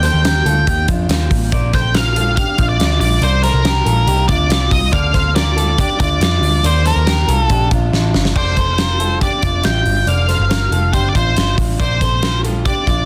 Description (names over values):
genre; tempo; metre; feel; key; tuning
jangly indie pop; 140 BPM; 4/4; straight; unclear; A4 = 439 Hz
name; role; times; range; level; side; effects
octave-fuzz lead guitar; melody; 0.0-13.1 s; Bb4 to G5; -21 LUFS; equal; distortion
electric guitar through a small old amp; arpeggios; 0.0-13.1 s; Bb3 to D5; -25 LUFS; equal; none
vintage muted picked electric bass; bass; 0.0-13.1 s; F1 to F2; -19 LUFS; equal; none
big rock drum kit; drums; 0.0-13.0 s; crash cymbal, hi-hat, kick drum, snare drum; -21 LUFS; equal; none
room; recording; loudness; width
little or no reverb; dense, heavily limited modern master; -15 LUFS; mono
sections
0.0-8.4 A section; 8.4-13.1 B section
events
drum fill 7.9-8.4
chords
0.0 Eb; 1.5 Bb; 3.2 Cm7; 4.9 Dm; 6.6 Eb; 7.5 Bb; 8.4 F6; 11.8 Bbmaj7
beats
0.24 0.67 1.09 | 1.52 1.95 2.37 2.80 | 3.22 3.65 4.08 4.50 | 4.93 5.36 5.78 6.21 | 6.64 7.07 7.49 7.92 | 8.35 8.78 9.21 9.64 | 10.07 10.50 10.93 11.36 | 11.79 12.22 12.65